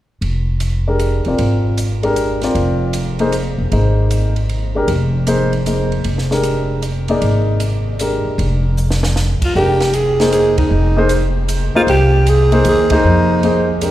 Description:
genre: modal jazz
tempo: 154 BPM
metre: 3/4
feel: swing 66% on 8ths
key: F dorian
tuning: A4 = 443 Hz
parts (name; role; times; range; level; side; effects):
- upright bass; bass; 0.2-13.9 s; E1 to F2; -16 LUFS; equal; none
- compact cocktail drum kit; drums; 0.2-13.9 s; crash cymbal, hi-hat, kick drum, ride cymbal, snare drum; -26 LUFS; right 1 dB; none
- warm baby grand piano; accompaniment; 0.9-13.9 s; Ab3 to D5; -18 LUFS; left 1 dB; none
- growling alto saxophone; melody; 9.5-13.7 s; Eb4 to Ab4; -16 LUFS; right 1 dB; none
room: wet cathedral reverb, RT60 6.6 s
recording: recorded in a church or concert hall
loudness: -13 LUFS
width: side -14 dB against mid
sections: 0.2-9.6 A section; 9.6-13.9 B section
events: drum fill 8.8-9.2; band accent 10.5, 12.8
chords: 0.2 Fm11

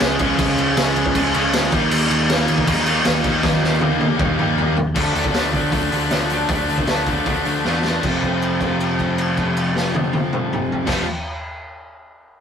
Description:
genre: punk rock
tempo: 157 BPM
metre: 4/4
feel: straight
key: F mixolydian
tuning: A4 = 440 Hz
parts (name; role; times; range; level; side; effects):
- distorted electric guitar; riff; 0.0-11.1 s; F2 to F4; -22 LUFS; left 6 dB; overdrive
- distorted electric guitar; riff; 0.0-11.1 s; F2 to Eb4; -23 LUFS; right 5 dB; distortion
- picked electric bass; bass; 0.0-11.0 s; F1 to E2; -25 LUFS; equal; none
- raw garage drum kit; drums; 0.0-11.0 s; crash cymbal, hi-hat, kick drum, snare drum, toms; -21 LUFS; equal; none
room: light reverb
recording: rough rehearsal-room recording, warm saturation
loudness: -16 LUFS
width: side -7 dB against mid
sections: 0.0-5.0 A section; 5.0-8.0 B section; 8.0-11.1 C section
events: drum fill 3.4-5.0, 7.6-8.0; held note 8.0-10.9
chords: 0.0 Db; 1.7 Eb; 5.0 Dm; 8.0 F

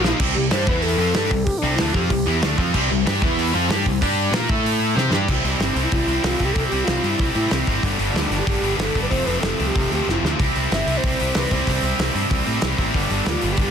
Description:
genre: punk rock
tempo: 188 BPM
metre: 4/4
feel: straight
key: C major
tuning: A4 = 440 Hz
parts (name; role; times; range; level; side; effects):
- mellow wooden-headed alto flute; melody; 0.0-2.4, 5.6-13.7 s; C4 to E5; -26 LUFS; equal; digital delay
- distorted electric guitar; riff; 0.0-13.7 s; F2 to C5; -25 LUFS; left 16 dB; overdrive
- distorted electric guitar; riff; 0.0-13.7 s; F2 to C5; -25 LUFS; right 16 dB; distortion
- high-gain distorted guitar; riff; 0.0, 2.7-5.3 s; C3 to C5; -25 LUFS; left 1 dB; distortion
- fuzz picked electric bass; bass; 0.0-13.7 s; F1 to C3; -24 LUFS; equal; overdrive
- loose indie drum kit; drums; 0.0-13.7 s; crash cymbal, hi-hat, kick drum, snare drum; -24 LUFS; equal; none
room: little or no reverb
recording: dense, heavily limited modern master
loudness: -18 LUFS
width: side -7 dB against mid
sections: 0.2-5.3 A section; 5.3-13.7 B section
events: drum fill 0.0, 5.0-5.3, 10.1-10.4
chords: 0.2 C5; 0.7 E5; 1.0 C; 3.2 E5; 3.5 C5; 4.0 G5; 4.3 Bb5; 4.5 A5; 5.0 C5; 5.3 C; 7.8 G; 9.1 F; 10.4 C; 12.9 G

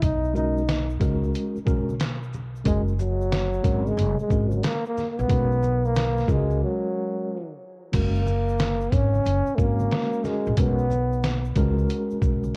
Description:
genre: hip hop, jazz-hop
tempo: 91 BPM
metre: 4/4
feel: swing 66% on 16ths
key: F# major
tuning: A4 = 440 Hz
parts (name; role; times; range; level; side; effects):
- mellow trombone; melody; 0.0-11.5 s; E#3 to D#4; -29 LUFS; equal; cassette tape, tape echo
- upright bass; bass; 0.0-12.5 s; F#1 to C#2; -28 LUFS; equal; none
- trip hop sampler-style drum kit; drums; 0.0-12.4 s; crash cymbal, hi-hat, kick drum, shaker, snare drum; -28 LUFS; equal; none
- egg shaker and congas; percussion; 0.0-12.5 s; none; -42 LUFS; equal; none
- mellow tine electric piano; accompaniment; 0.3-12.6 s; G#3 to A#4; -31 LUFS; equal; cassette tape
room: light reverb, studio ambience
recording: home recording on cassette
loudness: -24 LUFS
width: mono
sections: 0.0-7.9 A section; 7.9-12.6 A section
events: break 6.6-7.9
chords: 0.0 C#7sus4; 2.7 F#add9; 5.3 B5; 6.3 C#sus4; 7.9 F#add9; 10.6 B5

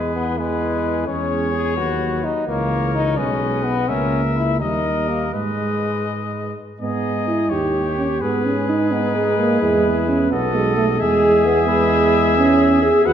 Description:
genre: classical, brass quintet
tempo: 86 BPM (dotted quarters)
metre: 6/8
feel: rubato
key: G# minor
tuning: A4 = 440 Hz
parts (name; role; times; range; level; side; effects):
- clear trumpet; melody; 0.0-13.1 s; B4 to F#5; -25 LUFS; left 8 dB; none
- warm flugelhorn; second line; 0.0-13.1 s; G4 to B4; -27 LUFS; right 5 dB; none
- clear French horn; accompaniment; 0.0-13.1 s; G#3 to B4; -24 LUFS; left 3 dB; none
- mellow euphonium; accompaniment; 0.0-13.1 s; E3 to G#4; -20 LUFS; right 2 dB; none
- mellow tuba; bass; 0.0-13.1 s; B1 to G#2; -23 LUFS; right 3 dB; none
room: wet recital hall reverb, RT60 1.6 s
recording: minimal, uncompressed stereo recording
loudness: -16 LUFS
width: side -9 dB against mid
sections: 0.0-6.8 A section; 6.8-13.1 A section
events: none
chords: 0.0 E; 1.1 C#m/E; 1.8 B/D#; 2.5 A#dim/C#; 3.2 G#m/B; 3.9 A#dim/C#; 4.6 D#; 5.3 G#m; 7.5 D#7; 8.2 G#m; 9.6 E; 10.3 B7; 11.0 E

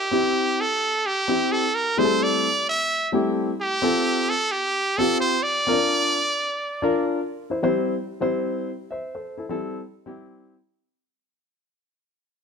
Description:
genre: soul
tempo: 130 BPM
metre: 4/4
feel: straight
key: C mixolydian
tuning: A4 = 435 Hz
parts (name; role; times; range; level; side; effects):
- brilliant trumpet; melody; 0.0-7.1 s; G4 to E5; -22 LUFS; right 2 dB; none
- dark concert grand piano; accompaniment; 0.1-10.5 s; G3 to E5; -24 LUFS; left 2 dB; none
room: moderate echo chamber reverb, RT60 1.9 s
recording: dark, warm production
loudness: -20 LUFS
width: side -6 dB against mid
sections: 0.0-7.5 A section; 7.5-11.2 B section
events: fade-out 7.5-11.2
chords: 0.1 C; 2.0 Am7; 3.8 F; 5.7 Bb; 7.5 C

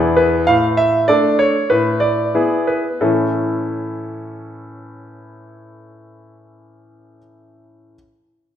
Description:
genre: classical-period piano sonatina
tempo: 88-100 BPM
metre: 2/4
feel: straight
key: A major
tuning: A4 = 440 Hz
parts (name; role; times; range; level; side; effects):
- bright concert grand piano; solo; 0.0-8.0 s; E2 to F5; -15 LUFS; equal; none
room: wet recital hall reverb, RT60 1.6 s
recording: none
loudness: -14 LUFS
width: side -10 dB against mid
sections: 0.0-3.0 A section; 3.0-5.7 B section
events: slowing down 0.0-3.0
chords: 0.5 D5/A; 1.7 E7/A; 3.0 A

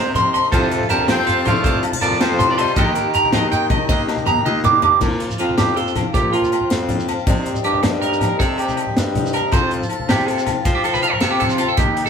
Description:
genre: highlife guitar band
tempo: 106 BPM (dotted quarters)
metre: 12/8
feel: straight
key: unclear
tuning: A4 = 440 Hz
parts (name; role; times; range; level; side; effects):
- picked swing-style acoustic guitar; accompaniment; 0.0-12.1 s; G2 to Bb4; -26 LUFS; left 6 dB; none
- combo organ; sustained chords; 0.0-12.1 s; C5 to Bb5; -31 LUFS; left 1 dB; none
- electric guitar at the edge of break-up; arpeggios; 0.0-12.1 s; C4 to D6; -19 LUFS; right 4 dB; none
- clear baritone saxophone; bass; 0.0-12.1 s; Eb2 to F3; -24 LUFS; equal; none
- congas; percussion; 0.1-12.1 s; none; -25 LUFS; left 1 dB; none
- crunchy breakbeat drum kit; drums; 0.2-12.1 s; crash cymbal, hi-hat, kick drum, snare drum, toms; -22 LUFS; equal; none
- shekere; percussion; 0.2-12.1 s; none; -28 LUFS; right 1 dB; none
- agogo bells; percussion; 0.3-12.0 s; none; -29 LUFS; left 7 dB; none
- electric guitar at the edge of break-up; melody; 0.5-4.6 s; F4 to G5; -22 LUFS; right 2 dB; none
- growling tenor saxophone; second line; 0.5-4.6 s; C3 to C4; -27 LUFS; left 5 dB; none
room: moderate stone room reverb, RT60 1.3 s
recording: band playing live in one room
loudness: -15 LUFS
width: side -6 dB against mid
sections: 0.0-5.0 A section; 5.0-12.1 B section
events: drum fill 3.9-5.0; clean electric guitar solo 5.0-12.1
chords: 0.0 Cm7; 0.5 F; 2.8 Eb; 5.0 Bbsus2; 7.3 Cm7; 9.5 F

